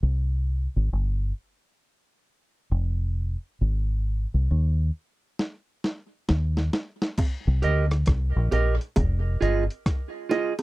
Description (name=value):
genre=dub reggae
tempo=67 BPM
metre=4/4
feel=swing 63% on 16ths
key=C minor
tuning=A4 = 439 Hz
part: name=deep dub fingered electric bass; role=bass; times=0.0-9.7 s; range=F1 to Eb2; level=-23 LUFS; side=equal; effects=none
part: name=dusty soul sampler-style drum kit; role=drums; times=5.4-10.6 s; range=crash cymbal, hi-hat, kick drum, rim click, snare drum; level=-27 LUFS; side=equal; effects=none
part: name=bongos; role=percussion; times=7.2-10.6 s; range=none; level=-30 LUFS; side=right 3 dB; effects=tape echo
part: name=clean electric guitar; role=accompaniment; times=7.6-10.5 s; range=F4 to Eb5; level=-27 LUFS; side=right 6 dB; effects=tape echo
room=little or no reverb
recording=dry, close 1970s-style studio recording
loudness=-23 LUFS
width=side -20 dB against mid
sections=0.0-7.2 A section; 7.2-10.6 B section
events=break 0.0-7.2; drum fill 5.4-7.2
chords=0.0 C5; 1.8 N.C.; 3.6 Ab5; 5.4 N.C.; 7.2 Cm7; 9.0 Fm7